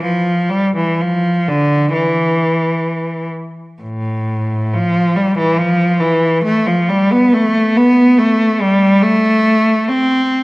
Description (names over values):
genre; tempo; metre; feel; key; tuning
classical, free, expressive piece for unaccompanied cello; 56-72 BPM; 4/4; rubato; A minor; A4 = 440 Hz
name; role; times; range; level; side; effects
clear cello; solo; 0.0-10.4 s; A2 to C4; -12 LUFS; equal; none
room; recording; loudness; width
wet recital hall reverb, RT60 1.6 s; worn, warbling old tape, cassette tape, warbly pitch drift; -12 LUFS; side -22 dB against mid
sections
0.0-10.4 A section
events
none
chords
none